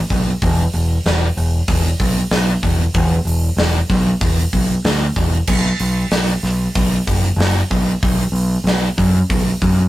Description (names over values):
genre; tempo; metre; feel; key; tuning
rock, shoegaze and dream pop; 94 BPM; 4/4; straight; unclear; A4 = 440 Hz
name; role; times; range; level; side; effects
growling fingered electric bass; bass; 0.1-9.9 s; E1 to F#2; -16 LUFS; equal; overdrive
gated 80s drum kit; drums; 0.1-9.8 s; crash cymbal, hi-hat, kick drum, snare drum; -19 LUFS; equal; none
room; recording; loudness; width
light reverb; rough rehearsal-room recording, tube saturation; -14 LUFS; side -16 dB against mid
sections
0.0-9.9 A section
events
none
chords
none